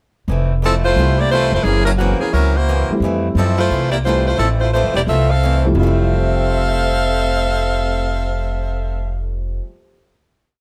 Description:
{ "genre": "jazz, big band swing", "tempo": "176 BPM", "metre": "4/4", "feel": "swing 65% on 8ths", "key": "F major", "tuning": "A4 = 441 Hz", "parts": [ { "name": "picked acoustic archtop guitar", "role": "accompaniment", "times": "0.3-9.7 s", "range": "F2 to C4", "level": "-29 LUFS", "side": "equal", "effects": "none" }, { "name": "upright bass", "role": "bass", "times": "0.3-9.6 s", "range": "E1 to Gb2", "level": "-20 LUFS", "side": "equal", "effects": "none" }, { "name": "edgy saxophone section", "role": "melody", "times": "0.6-9.2 s", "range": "Fb3 to F5", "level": "-20 LUFS", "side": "equal", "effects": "none" }, { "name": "warm concert grand piano", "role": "accompaniment", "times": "1.0-10.2 s", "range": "F2 to G6", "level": "-26 LUFS", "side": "equal", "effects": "none" } ], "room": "light reverb", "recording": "close, detailed microphones", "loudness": "-17 LUFS", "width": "mono", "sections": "0.3-5.8 A section; 5.8-8.5 final chord", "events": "none", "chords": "0.3 Fmaj7; 1.7 Gb7#11; 3.0 Fmaj7" }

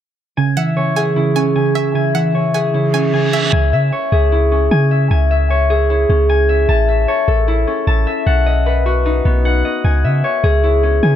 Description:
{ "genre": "hip hop", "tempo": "152 BPM", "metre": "4/4", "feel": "half-time", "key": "C# minor", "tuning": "A4 = 440 Hz", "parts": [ { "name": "warbly lo-fi synth keys", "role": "accompaniment", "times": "0.4-3.5 s", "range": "C#3 to C#4", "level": "-16 LUFS", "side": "right 4 dB", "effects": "chorus, low-pass filter" }, { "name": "concert harp", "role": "arpeggios", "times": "0.4-11.2 s", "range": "B3 to A5", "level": "-16 LUFS", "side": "left 2 dB", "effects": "low-pass filter, analog delay" }, { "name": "string-like resonator pluck", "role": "second line", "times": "0.6-3.5 s", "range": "E5 to G#5", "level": "-26 LUFS", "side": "right 7 dB", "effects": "chorus, analog delay" }, { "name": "reverse cymbal", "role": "sound effects", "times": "2.9-3.5 s", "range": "none", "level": "-22 LUFS", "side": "right 7 dB", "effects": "none" }, { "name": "clean 808-style bass", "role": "bass", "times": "3.5-11.2 s", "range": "A1 to C#3", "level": "-14 LUFS", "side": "equal", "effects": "none" } ], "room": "light reverb, digital ambience", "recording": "echo-heavy mix", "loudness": "-13 LUFS", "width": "side -10 dB against mid", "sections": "0.4-3.5 A section; 3.5-11.2 B section", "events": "reverse cymbal 2.9-3.5", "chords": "0.4 C#m; 6.7 A; 8.3 B; 9.8 C#m" }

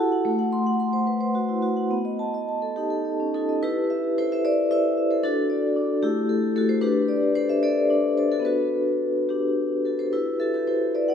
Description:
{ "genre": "classical, contemporary piece for solo vibraphone", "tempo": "69-76 BPM (dotted quarters)", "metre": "6/8", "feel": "rubato", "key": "E minor", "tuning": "A4 = 440 Hz", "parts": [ { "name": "vibraphone with soft mallets", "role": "solo", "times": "0.0-11.1 s", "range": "A3 to C6", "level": "-21 LUFS", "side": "left 1 dB", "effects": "none" } ], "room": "wet concert hall reverb, RT60 2.5 s", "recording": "none", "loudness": "-21 LUFS", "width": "side -8 dB against mid", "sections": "0.0-3.6 A section; 3.6-11.1 B section", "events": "none", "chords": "0.3 Am6; 1.9 Baug7; 3.6 Em; 5.2 D; 6.0 A5; 6.8 D7(no3); 8.4 Bm7; 10.1 Em9" }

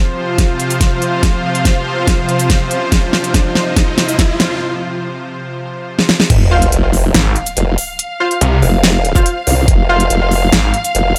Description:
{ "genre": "heavy wobble dubstep", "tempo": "142 BPM", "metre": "4/4", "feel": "half-time", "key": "unclear", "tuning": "A4 = 442 Hz", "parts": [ { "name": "supersaw pad", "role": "sustained chords", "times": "0.0-6.3 s", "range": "C3 to C5", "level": "-22 LUFS", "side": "equal", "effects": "vintage 12-bit sampler grit, sidechain pumping" }, { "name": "riser and sub drop", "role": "sound effects", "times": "1.3-8.0 s", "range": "none", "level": "-23 LUFS", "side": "equal", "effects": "none" }, { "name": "clear studio string section", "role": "texture", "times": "0.0-11.2 s", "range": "F4 to F5", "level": "-24 LUFS", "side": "equal", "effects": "sidechain pumping" }, { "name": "big-room dance drum kit", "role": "drums", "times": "0.4-11.2 s", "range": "crash cymbal, hi-hat, shaker, snare drum", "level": "-18 LUFS", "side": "equal", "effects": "none" }, { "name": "electronic kick drum", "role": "drums", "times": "0.4-6.4, 9.2-9.8 s", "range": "none", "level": "-16 LUFS", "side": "equal", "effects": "none" }, { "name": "formant-sweep wobble bass", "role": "bass", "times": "6.3-11.1 s", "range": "F1 to C2", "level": "-16 LUFS", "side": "equal", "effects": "chorus, overdrive" }, { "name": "orchestra-hit-like synth stab", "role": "stabs", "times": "6.5-10.0 s", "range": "F4 to F5", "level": "-20 LUFS", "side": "equal", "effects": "built-in reverb, cassette tape, digital delay" }, { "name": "snarling distorted saw bass", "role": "bass", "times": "7.1-10.7 s", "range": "Ab1 to C2", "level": "-15 LUFS", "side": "equal", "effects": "distortion, overdrive" } ], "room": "light reverb", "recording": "none", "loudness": "-14 LUFS", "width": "mono", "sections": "0.0-6.3 A section; 6.3-11.2 B section", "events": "build-up 0.0-6.3; drum fill 0.0-4.6, 6.0-6.3; riser 1.3-4.6; break 4.6-6.3; drop 6.3-11.2; impact 6.3-8.0", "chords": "0.0 F5" }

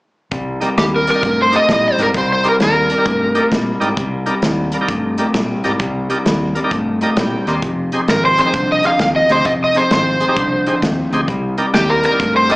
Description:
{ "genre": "electric blues shuffle", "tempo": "131 BPM", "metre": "4/4", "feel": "swing 65% on 8ths", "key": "C minor", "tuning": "A4 = 440 Hz", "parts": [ { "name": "electric guitar through a small old amp", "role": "riff", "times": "0.3-12.6 s", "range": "F2 to A3", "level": "-19 LUFS", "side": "left 1 dB", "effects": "none" }, { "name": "vintage muted fingered electric bass", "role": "bass", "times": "0.3-12.5 s", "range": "F1 to Bb2", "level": "-24 LUFS", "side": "equal", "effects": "none" }, { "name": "natural country drum kit", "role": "drums", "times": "0.3-12.6 s", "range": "hi-hat, kick drum, snare drum", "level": "-21 LUFS", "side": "equal", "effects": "none" }, { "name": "bright tonewheel organ", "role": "accompaniment", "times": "0.6-12.6 s", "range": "Eb4 to C6", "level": "-23 LUFS", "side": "right 1 dB", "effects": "slow rotary speaker, overdrive" }, { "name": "overdriven slide guitar", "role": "melody", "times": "0.8-3.5, 8.1-12.6 s", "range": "G4 to F5", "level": "-14 LUFS", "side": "equal", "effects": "slapback echo" } ], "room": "moderate lush hall reverb, RT60 1.7 s", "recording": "live gig heard through the venue's PA, club ambience, small speaker sound", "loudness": "-13 LUFS", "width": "side -22 dB against mid", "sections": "0.3-12.6 A section", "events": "tonewheel organ fill 6.7-7.6", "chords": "0.3 Cm9; 7.6 Fm9; 11.3 Cm9" }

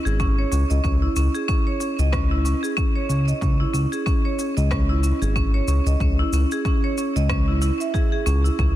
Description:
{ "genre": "organic downtempo", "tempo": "93 BPM", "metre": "4/4", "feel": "swing 57% on 16ths", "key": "C# minor", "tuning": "A4 = 440 Hz", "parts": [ { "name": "marimba with hard mallets", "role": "arpeggios", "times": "0.0-8.7 s", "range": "C#4 to E5", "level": "-24 LUFS", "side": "right 1 dB", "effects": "tape echo" }, { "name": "smooth synth bass", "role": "bass", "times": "0.1-8.8 s", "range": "G#1 to C#2", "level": "-20 LUFS", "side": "equal", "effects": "tube saturation" }, { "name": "electronic shaker and rim click", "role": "drums", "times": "0.1-8.7 s", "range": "none", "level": "-36 LUFS", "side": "equal", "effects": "overdrive" }, { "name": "electronic kick drum", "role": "drums", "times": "0.2-8.7 s", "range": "none", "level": "-22 LUFS", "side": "equal", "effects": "overdrive" } ], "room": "little or no reverb", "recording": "dense, heavily limited modern master", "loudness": "-19 LUFS", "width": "side -13 dB against mid", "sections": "0.0-8.8 A section", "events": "none", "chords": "0.0 C#5" }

